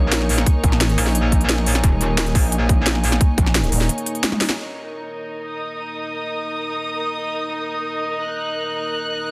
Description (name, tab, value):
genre	dark technical drum and bass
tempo	175 BPM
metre	4/4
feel	straight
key	unclear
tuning	A4 = 440 Hz
part	dark analog pad	sustained chords	0.0-9.3 s	Bb3 to Ab5	-32 LUFS	equal	chorus, sidechain pumping
part	metallic wobble bass	bass	0.0-3.2 s	Eb1 to Bb1	-22 LUFS	equal	distortion, chorus, overdrive
part	dark studio string section	texture	0.0-9.3 s	Eb4 to Gb6	-28 LUFS	equal	sidechain pumping
part	drum and bass drum kit	drums	0.1-4.6 s	hi-hat, snare drum, toms	-24 LUFS	equal	none
part	electronic kick drum	drums	0.5-3.4 s	none	-19 LUFS	equal	overdrive
part	pulsing pluck wobble bass	bass	0.6-1.0, 3.4-3.9 s	Eb1 to Bb1	-22 LUFS	equal	chorus
room	light reverb, digital ambience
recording	dense, heavily limited modern master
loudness	-20 LUFS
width	mono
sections	0.0-4.6 A section; 4.6-9.3 B section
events	drop 0.0-4.6; break 3.9-4.6; drum fill 4.2-4.6; band accent 4.5; filter sweep on analog synth pad 4.6-9.3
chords	0.0 Eb5